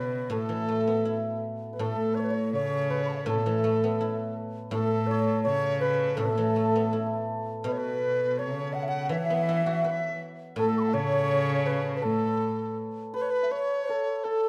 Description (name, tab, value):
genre	chinese traditional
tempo	82 BPM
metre	2/4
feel	straight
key	A gong mode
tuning	A4 = 444 Hz
part	mellow xiao	melody	0.0-14.5 s	A4 to C#6	-32 LUFS	equal	none
part	bright reedy large dizi	second line	0.0-14.5 s	A4 to F#5	-35 LUFS	equal	none
part	hammered dulcimer	second line	0.0-14.5 s	E4 to F#5	-36 LUFS	equal	none
part	warm cello	second line	0.0-12.8 s	A2 to E3	-33 LUFS	equal	none
part	guzheng	accompaniment	0.0-12.8 s	A2 to B4	-36 LUFS	equal	none
room	moderate recital hall reverb, RT60 1.6 s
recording	close, detailed microphones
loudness	-28 LUFS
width	mono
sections	0.0-1.8 A section; 1.8-13.5 B section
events	none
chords	none